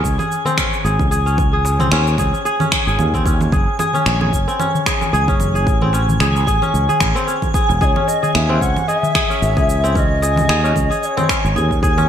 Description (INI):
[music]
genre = organic downtempo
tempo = 112 BPM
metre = 4/4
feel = swing 56% on 16ths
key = C# harmonic minor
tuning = A4 = 439 Hz
[part]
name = kora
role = arpeggios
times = 0.0-12.1 s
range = B#3 to G#4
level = -20 LUFS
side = left 1 dB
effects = vintage 12-bit sampler grit, ping-pong delay
[part]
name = sustaining fretless electric bass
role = bass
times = 0.0-12.1 s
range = E1 to D#2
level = -18 LUFS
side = equal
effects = sidechain pumping
[part]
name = electronic kick drum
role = drums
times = 0.0-11.9 s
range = none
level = -20 LUFS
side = equal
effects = none
[part]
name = twinkling granular texture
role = texture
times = 0.1-12.1 s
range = G#5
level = -26 LUFS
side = right 2 dB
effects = built-in reverb, analog chorus
[part]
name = electronic shaker, congas and finger snaps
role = drums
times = 0.1-12.1 s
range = none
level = -22 LUFS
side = right 2 dB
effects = overdrive, gated reverb
[part]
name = darbuka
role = percussion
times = 0.2-12.1 s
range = none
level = -27 LUFS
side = left 5 dB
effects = none
[part]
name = breathy mellow Native American-style cedar flute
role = melody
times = 7.8-11.8 s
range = C#5 to F#5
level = -22 LUFS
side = left 2 dB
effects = digital delay
[sound]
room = moderate plate reverb, RT60 1.6 s, small room ambience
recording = bright 1980s-style digital production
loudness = -14 LUFS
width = side -9 dB against mid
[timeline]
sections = 0.0-12.1 A section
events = none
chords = 0.0 C#sus2; 3.5 F#5; 5.7 A; 7.8 C#sus2